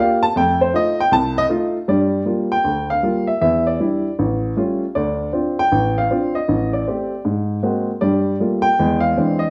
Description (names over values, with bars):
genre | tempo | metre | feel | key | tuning
solo jazz | 156 BPM | 4/4 | swing 66% on 8ths | G minor | A4 = 439 Hz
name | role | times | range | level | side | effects
warm baby grand piano | solo | 0.0-9.5 s | A1 to A5 | -19 LUFS | equal | none
room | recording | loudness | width
wet large studio reverb, RT60 0.9 s | band playing live in one room | -19 LUFS | mono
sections
0.0-1.9 A section; 1.9-9.5 B section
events
grand piano solo 0.0-1.9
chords
0.3 F7; 1.9 Gm7; 3.4 Em7; 4.2 Aaug7; 4.9 Dm7; 6.5 Cm69/A; 7.2 Ab9; 8.0 Gm9; 8.8 Eaug7